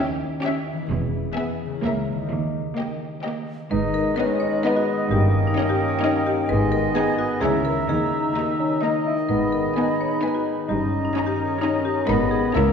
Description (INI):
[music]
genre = cinematic, playful, whimsical film cue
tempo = 129 BPM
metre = 3/4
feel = straight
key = G# minor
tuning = A4 = 438 Hz
[part]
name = rich chamber violin section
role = melody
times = 0.0-12.7 s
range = D#5 to B5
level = -33 LUFS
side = left 2 dB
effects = none
[part]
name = clear chamber violin section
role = second line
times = 0.0-12.7 s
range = D#4 to A#4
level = -34 LUFS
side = equal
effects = none
[part]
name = rich symphonic viola section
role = accompaniment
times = 0.0-12.7 s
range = A#3 to C#4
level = -30 LUFS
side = right 1 dB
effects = none
[part]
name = concert harp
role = arpeggios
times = 0.0-12.7 s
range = G2 to D#5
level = -28 LUFS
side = left 4 dB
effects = none
[part]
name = bright studio cello section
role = bass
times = 0.9-12.7 s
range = C#2 to G#2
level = -29 LUFS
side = right 3 dB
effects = none
[part]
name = clear studio double bass section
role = bass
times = 0.9-12.7 s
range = E1 to D#2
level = -30 LUFS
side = right 3 dB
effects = none
[part]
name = marimba with hard mallets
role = melody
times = 3.7-12.7 s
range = D#4 to C#5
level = -27 LUFS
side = left 7 dB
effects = none
[part]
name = mellow hollow silver concert flute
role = second line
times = 3.7-12.7 s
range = D#5 to B5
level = -31 LUFS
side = equal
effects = none
[part]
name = warm clarinet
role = second line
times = 3.7-12.7 s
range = G#3 to D#4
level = -31 LUFS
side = left 1 dB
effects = none
[part]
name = warm oboe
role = second line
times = 3.7-12.7 s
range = D#5 to E5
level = -30 LUFS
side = right 3 dB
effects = none
[part]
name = mellow bassoon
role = accompaniment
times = 3.7-12.7 s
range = G#3 to E4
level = -28 LUFS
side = right 1 dB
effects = none
[part]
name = mellow French horn section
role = sustained chords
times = 3.7-12.7 s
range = D#3 to D#4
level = -29 LUFS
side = left 1 dB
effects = none
[sound]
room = wet scoring stage reverb, RT60 1.9 s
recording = heard from further back in the room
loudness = -20 LUFS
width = side -6 dB against mid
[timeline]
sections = 0.0-3.7 A section; 3.7-12.7 B section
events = none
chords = 0.0 D#7b9; 0.9 E; 1.8 A#dim/C#; 2.3 D#; 3.7 G#m; 5.1 D#7/G; 6.5 G#m; 7.4 A#dim/C#; 7.9 D#; 9.3 G#m; 10.7 D#7/G; 12.1 G#m